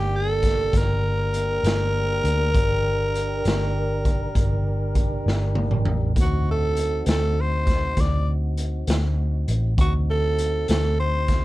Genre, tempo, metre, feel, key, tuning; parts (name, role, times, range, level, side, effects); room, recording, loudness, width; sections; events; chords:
slow blues; 66 BPM (dotted quarters); 12/8; straight; G harmonic minor; A4 = 442 Hz
growling tenor saxophone; melody; 0.0-11.4 s; F#4 to D5; -25 LUFS; equal
tonewheel organ; sustained chords; 0.0-11.4 s; Bb3 to Bb4; -32 LUFS; equal; slow rotary speaker
vintage muted fingered electric bass; bass; 0.0-11.4 s; G1 to D2; -23 LUFS; equal
raw garage drum kit; drums; 0.4-11.4 s; hi-hat, kick drum, snare drum, toms; -24 LUFS; equal
little or no reverb; dark, warm production; -20 LUFS; side -17 dB against mid
0.0-11.4 A section
drum fill 5.3-6.2
0.0 Gm; 6.2 D7b9